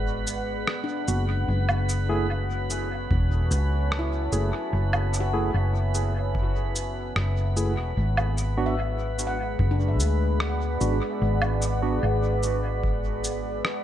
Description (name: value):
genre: ambient dub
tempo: 74 BPM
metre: 4/4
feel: straight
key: F# minor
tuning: A4 = 442 Hz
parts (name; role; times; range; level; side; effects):
- deep dark ambient pad; sustained chords; 0.0-13.8 s; G#3 to A5; -32 LUFS; equal; chorus, built-in reverb
- handpan; arpeggios; 0.0-13.2 s; D4 to F#5; -37 LUFS; left 3 dB; dub echo
- hollow-body short-scale fingered electric bass; bass; 0.0-13.6 s; E1 to D2; -25 LUFS; equal; none
- drifting glass-harmonics texture; texture; 0.0-13.8 s; B3 to B4; -35 LUFS; left 1 dB; chorus, built-in reverb
- electronic cabasa, rim click and woodblock; drums; 0.3-13.8 s; none; -31 LUFS; right 1 dB; studio ambience, dub echo
- tine electric piano; stabs; 1.1-12.0 s; A3 to G#4; -33 LUFS; right 2 dB; medium stereo tremolo, dub echo
- electronic kick drum; drums; 3.1-13.0 s; none; -29 LUFS; equal; overdrive, studio ambience
room: light reverb, digital ambience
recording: none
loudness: -23 LUFS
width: side -11 dB against mid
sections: 0.0-13.8 A section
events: none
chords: 0.0 G#m7b5; 1.5 F#m9; 8.0 G#m7b5